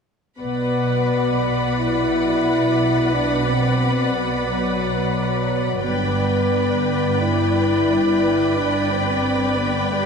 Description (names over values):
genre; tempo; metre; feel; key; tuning
cinematic; 89 BPM; 4/4; straight; B phrygian; A4 = 440 Hz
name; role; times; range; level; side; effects
rich symphonic violin section; second line; 0.4-10.1 s; F#5 to B5; -26 LUFS; left 5 dB; none
rich symphonic viola section; accompaniment; 0.4-10.1 s; B4 to D5; -24 LUFS; right 3 dB; none
mellow French horn section; sustained chords; 0.4-10.1 s; F#3 to E4; -21 LUFS; left 3 dB; none
rich symphonic cello section; bass; 0.4-10.1 s; G2 to B2; -27 LUFS; right 4 dB; none
warm symphonic double bass section; bass; 0.4-10.1 s; G1 to B1; -26 LUFS; right 3 dB; none
room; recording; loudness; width
wet scoring stage reverb, RT60 2.0 s; none; -17 LUFS; side -6 dB against mid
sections
0.4-10.1 A section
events
none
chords
0.4 Bm; 5.8 G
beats
| 0.40 1.08 1.77 2.45 | 3.13 3.81 4.48 5.16 | 5.85 6.53 7.21 7.89 | 8.57 9.24 9.93